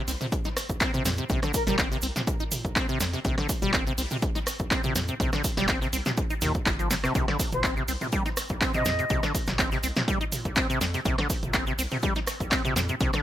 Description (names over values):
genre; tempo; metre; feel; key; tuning
acid house; 123 BPM; 4/4; swing 53% on 16ths; C minor; A4 = 440 Hz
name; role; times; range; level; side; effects
acid bass, saw; riff; 0.0-13.2 s; C3 to Eb4; -30 LUFS; equal; analog chorus, dub echo
round analog bass; bass; 0.1-13.1 s; G1 to F2; -33 LUFS; equal; sidechain pumping
natural country drum kit; drums; 0.1-13.1 s; hi-hat, snare drum; -41 LUFS; left 3 dB; none
punchy analog drum machine; drums; 0.1-13.2 s; handclaps, hi-hat, rim click, snare drum, toms; -29 LUFS; equal; none
cabasa; percussion; 0.1-13.2 s; none; -36 LUFS; right 6 dB; none
electronic kick drum; drums; 0.3-13.1 s; none; -29 LUFS; equal; none
breathy mellow jazz flute; melody; 1.5-1.7, 7.5-9.2 s; Bb4 to Eb5; -34 LUFS; left 1 dB; dub echo
room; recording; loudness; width
light reverb; none; -24 LUFS; side -12 dB against mid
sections
0.0-13.2 A section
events
none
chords
0.0 C5